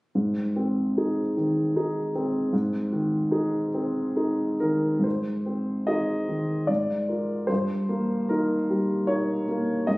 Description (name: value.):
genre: classical, romantic character piece for solo piano.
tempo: 64-79 BPM.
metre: 3/4.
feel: rubato.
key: Ab major.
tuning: A4 = 440 Hz.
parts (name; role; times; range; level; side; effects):
warm upright piano; solo; 0.2-10.0 s; G2 to Eb5; -23 LUFS; equal; none.
room: light reverb.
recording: recorded on a phone in the room, studio reverb, compression.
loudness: -23 LUFS.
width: side -21 dB against mid.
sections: 0.1-5.0 A section; 5.0-10.0 B section.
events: none.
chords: 0.1 Ab; 6.7 Bb7/Ab; 7.5 Eb/G.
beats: | 0.15 0.97 1.75 | 2.53 3.31 4.15 | 5.05 5.88 6.69 | 7.49 8.30 9.09 | 9.87.